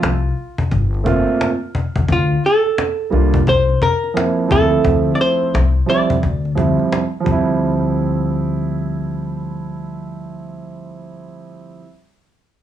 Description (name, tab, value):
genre	hip hop, jazz-hop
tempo	87 BPM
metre	4/4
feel	swing 63% on 16ths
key	D minor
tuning	A4 = 440 Hz
part	archtop guitar, miked and amplified	melody	0.0-6.9 s	F4 to D5	-18 LUFS	equal	cassette tape
part	dark baby grand piano	accompaniment	0.0-11.8 s	F3 to E5	-19 LUFS	right 5 dB	none
part	upright bass	bass	0.0-11.8 s	G1 to Eb2	-19 LUFS	left 2 dB	transformer saturation
part	cajon	drums	0.0-7.5 s	none	-21 LUFS	left 2 dB	vintage 12-bit sampler grit
room	moderate booth ambience, RT60 0.2 s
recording	home recording on cassette, studio reverb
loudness	-15 LUFS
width	side -10 dB against mid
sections	0.0-7.6 A section; 7.6-10.4 B section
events	none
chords	0.0 Dm7 (rootless); 0.7 Gm11; 2.1 Dm7; 3.5 C7sus4; 4.5 Dm7; 6.2 Dm11